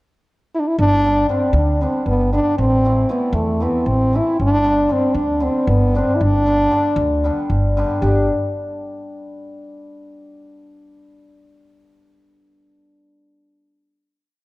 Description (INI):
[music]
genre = balkan folk, Balkan wedding band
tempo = 232 BPM (eighths)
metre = 7/8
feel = straight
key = G major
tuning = A4 = 440 Hz
[part]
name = warm French horn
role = melody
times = 0.5-8.3 s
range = A3 to G4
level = -18 LUFS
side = equal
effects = none
[part]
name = upright bass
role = bass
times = 0.8-8.3 s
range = G1 to E2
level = -19 LUFS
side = equal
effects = none
[part]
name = hammered dulcimer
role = accompaniment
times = 1.0-8.3 s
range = D3 to E4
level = -24 LUFS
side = left 2 dB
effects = none
[sound]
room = moderate recital hall reverb, RT60 1.6 s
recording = dark, warm production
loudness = -15 LUFS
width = side -19 dB against mid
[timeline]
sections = 0.0-0.8 pickup bar; 0.8-8.0 A section; 8.0-9.8 final chord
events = none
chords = 0.0 N.C.; 0.8 G; 2.6 Am; 4.4 G